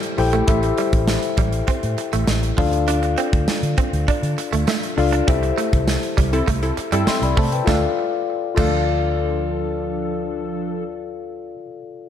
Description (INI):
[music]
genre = 1980s-style pop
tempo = 100 BPM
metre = 4/4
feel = straight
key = D minor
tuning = A4 = 440 Hz
[part]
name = mellow tine electric piano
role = accompaniment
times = 0.0-12.1 s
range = D4 to E6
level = -23 LUFS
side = left 6 dB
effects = none
[part]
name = modern studio drum kit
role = drums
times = 0.0-8.7 s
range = crash cymbal, hi-hat, kick drum, snare drum, tambourine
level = -22 LUFS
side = right 1 dB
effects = none
[part]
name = direct-recorded clean electric guitar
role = riff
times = 0.2-8.7 s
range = F3 to D4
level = -27 LUFS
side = right 8 dB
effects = lush chorus, digital delay
[part]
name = vintage muted fingered electric bass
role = bass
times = 0.2-11.5 s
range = A1 to D3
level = -22 LUFS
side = equal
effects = none
[part]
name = tambourine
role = percussion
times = 1.1-8.7 s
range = none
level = -40 LUFS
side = right 9 dB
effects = none
[part]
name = funky polysynth comp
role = stabs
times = 6.3-10.8 s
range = F3 to A4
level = -26 LUFS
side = right 1 dB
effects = chorus
[sound]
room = moderate lush hall reverb, RT60 2.0 s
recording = dark, warm production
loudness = -18 LUFS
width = side -9 dB against mid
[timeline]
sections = 0.0-7.7 A section; 7.7-10.1 B section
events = band accent 5.3-7.7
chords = 0.0 Am7; 2.6 Dm; 5.3 C6; 7.7 Dm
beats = | 0.48 1.08 1.68 2.28 | 2.88 3.48 4.08 4.68 | 5.28 5.88 6.48 7.08 | 7.68 8.28 8.88 9.48